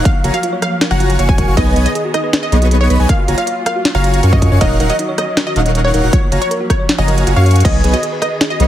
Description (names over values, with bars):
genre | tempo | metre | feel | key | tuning
future bass | 158 BPM | 4/4 | half-time | F# major | A4 = 442 Hz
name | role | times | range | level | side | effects
rich studio string section | sustained chords | 0.0-8.7 s | D#3 to G#4 | -24 LUFS | equal | sidechain pumping
airy dreamy lead | arpeggios | 0.0-8.7 s | F#5 to C#6 | -28 LUFS | equal | chorus, sidechain pumping, dub echo
thumb-piano-like synth pluck | arpeggios | 0.0-8.7 s | D#4 to C#5 | -25 LUFS | right 2 dB | chorus, sidechain pumping, dub echo
dense compressed supersaw | riff | 0.0-8.7 s | B3 to C#6 | -20 LUFS | equal | sidechain pumping
saturated sub bass | bass | 0.0-8.7 s | D#1 to F#2 | -13 LUFS | equal | sidechain pumping
wide unison pluck | melody | 0.1-8.7 s | C#5 to G#5 | -20 LUFS | equal | sidechain pumping, dub echo
electronic kick drum | drums | 0.1-7.7 s | none | -14 LUFS | equal | small room ambience
trap drum kit | drums | 0.1-8.7 s | crash cymbal, hi-hat, rim click, snare drum | -19 LUFS | equal | small room ambience
room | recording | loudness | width
little or no reverb | heavily compressed radio sound | -11 LUFS | side -12 dB against mid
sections
0.0-8.7 A section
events
kick drops out 7.3-7.6; drum fill 7.5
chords
0.1 F#maj7; 1.6 B6; 3.1 F#maj7; 4.6 D#m7; 6.1 F#maj7; 7.6 B6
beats
| 0.05 0.43 0.81 1.19 | 1.57 1.95 2.33 2.71 | 3.09 3.47 3.85 4.23 | 4.61 4.99 5.37 5.75 | 6.13 6.51 6.89 7.27 | 7.65 8.03 8.41